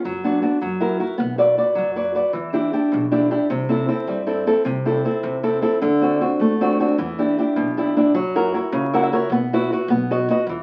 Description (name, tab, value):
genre	italian folk, Italian serenade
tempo	104 BPM (dotted quarters)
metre	6/8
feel	straight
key	E minor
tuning	A4 = 440 Hz
part	upright bass	bass	0.0-10.6 s	A1 to G2	-35 LUFS	equal	none
part	nylon-string guitar	accompaniment	0.1-10.6 s	B2 to F#5	-20 LUFS	equal	none
room	wet studio reverb, RT60 0.6 s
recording	very old 78 rpm record, vinyl crackle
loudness	-20 LUFS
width	mono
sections	0.0-2.3 A section; 2.3-10.6 B section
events	nylon-string guitar fill 8.7-9.3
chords	0.0 Bm/F#; 0.6 F#7; 1.2 Bm; 2.3 Em7; 3.5 C6; 4.7 Am/C; 5.8 D7; 7.0 Em7; 8.2 F#7; 9.3 Bsus4; 9.9 B